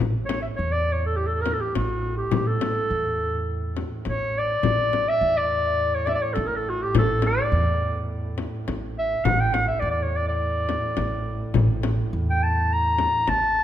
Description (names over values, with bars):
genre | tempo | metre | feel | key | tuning
Turkish makam ensemble | 104 BPM | 4/4 | straight | A makam hicaz | A4 = 440 Hz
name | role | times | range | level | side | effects
upright bass | bass | 0.0-13.6 s | A1 to E2 | -27 LUFS | right 1 dB | none
rich double bass | drone | 0.0-13.6 s | A2 | -33 LUFS | right 1 dB | none
warm clarinet | melody | 0.3-13.6 s | F#4-41c to Bb5 | -23 LUFS | equal | none
frame drum | percussion | 0.3-13.4 s | none | -27 LUFS | left 4 dB | none
room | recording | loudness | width
moderate concert hall reverb, RT60 2.2 s | minimal, uncompressed stereo recording | -21 LUFS | side -11 dB against mid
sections
0.0-13.6 A section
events
none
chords
none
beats
| 0.02 0.59 1.17 1.75 | 2.33 2.90 3.48 4.06 | 4.63 5.21 5.79 6.36 | 6.94 7.52 8.09 8.67 | 9.25 9.82 10.40 10.97 | 11.55 12.13 12.70 13.28